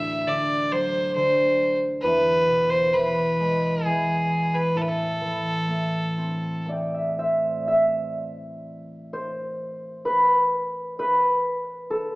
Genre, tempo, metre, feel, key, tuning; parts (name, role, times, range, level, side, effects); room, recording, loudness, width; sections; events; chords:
celtic folk, Celtic slow air; 58-69 BPM; 3/4; rubato; A minor; A4 = 441 Hz
bright fiddle; melody; 0.0-6.7 s; G#4 to E5; -22 LUFS; equal
concert harp; accompaniment; 0.0-12.2 s; D2 to G5; -24 LUFS; equal
moderate recital hall reverb, RT60 1.4 s; small speaker sound; -21 LUFS; side -23 dB against mid
0.0-7.7 A section; 7.7-12.2 B section
harp fill 6.2-7.7; harp solo 7.7-12.2
0.0 D; 2.0 E; 4.8 Am; 7.7 N.C.